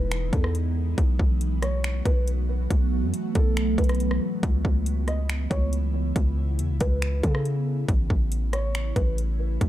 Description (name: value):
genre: hip hop, atmospheric cloud-rap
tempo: 139 BPM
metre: 4/4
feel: half-time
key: unclear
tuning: A4 = 441 Hz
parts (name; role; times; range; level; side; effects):
- felt-muted upright piano; melody; 0.0-9.2 s; A4 to D#5; -34 LUFS; equal; digital delay
- ethereal airy pad; sustained chords; 0.0-9.7 s; C#3 to F#4; -31 LUFS; right 2 dB; ensemble chorus, built-in reverb, phaser, sidechain pumping
- warm 808-style bass; bass; 0.0-9.7 s; E1 to C#3; -25 LUFS; equal; none
- trap drum kit; drums; 0.1-9.7 s; finger snaps, hi-hat, kick drum, rim click; -25 LUFS; equal; none
room: little or no reverb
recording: dark, warm production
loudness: -22 LUFS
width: side -13 dB against mid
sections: 0.0-9.7 A section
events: none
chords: 0.0 Emaj7; 1.0 B7sus4; 4.4 C#m7; 7.9 A